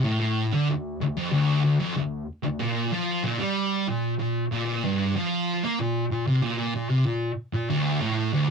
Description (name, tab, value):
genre	metal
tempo	94 BPM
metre	4/4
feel	straight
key	unclear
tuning	A4 = 439 Hz
part	thick fuzz guitar	solo	0.0-8.5 s	D2 to Bb3	-23 LUFS	equal	distortion
room	wet booth ambience, RT60 0.2 s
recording	rough rehearsal-room recording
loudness	-23 LUFS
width	side -6 dB against mid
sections	0.0-8.5 A section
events	none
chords	none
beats	| 0.05 0.69 1.33 1.97 | 2.61 3.25 3.88 4.52 | 5.16 5.79 6.43 7.06 | 7.69 8.32